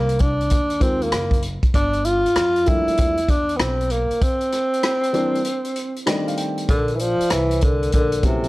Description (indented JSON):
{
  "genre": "hip hop, jazz-hop",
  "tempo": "97 BPM",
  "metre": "4/4",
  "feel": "swing 65% on 16ths",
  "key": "unclear",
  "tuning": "A4 = 440 Hz",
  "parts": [
    { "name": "breathy tenor saxophone", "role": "melody", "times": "0.0-8.5 s", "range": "C3 to F4", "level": "-20 LUFS", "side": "equal", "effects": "none" },
    { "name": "upright bass", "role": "bass", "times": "0.0-8.5 s", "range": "F#1 to F2", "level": "-26 LUFS", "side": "equal", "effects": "none" },
    { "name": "vintage drum kit", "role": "drums", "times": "0.1-8.5 s", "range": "hi-hat, kick drum, rim click", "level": "-22 LUFS", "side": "equal", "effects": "none" },
    { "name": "dark upright piano", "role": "accompaniment", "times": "0.8-8.5 s", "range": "Eb3 to G5", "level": "-25 LUFS", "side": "equal", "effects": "none" },
    { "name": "vibraphone with soft mallets", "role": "second line", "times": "6.7-8.5 s", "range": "A4 to D5", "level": "-27 LUFS", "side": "left 2 dB", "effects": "tape echo" }
  ],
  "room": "light reverb, studio reverb",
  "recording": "dry, gritty hardware recording",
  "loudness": "-18 LUFS",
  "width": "side -19 dB against mid",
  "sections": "0.0-6.7 A section; 6.7-8.5 A section",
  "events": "break 4.2-6.7; upright piano fill 5.8-6.7",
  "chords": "0.0 Ab69; 1.7 Gm7; 4.2 C9; 6.1 F13/Eb; 6.7 Bbsus2",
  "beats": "0.50 1.12 | 1.74 2.36 2.98 3.60 | 4.21 4.83 5.45 6.07 | 6.69 7.31 7.93"
}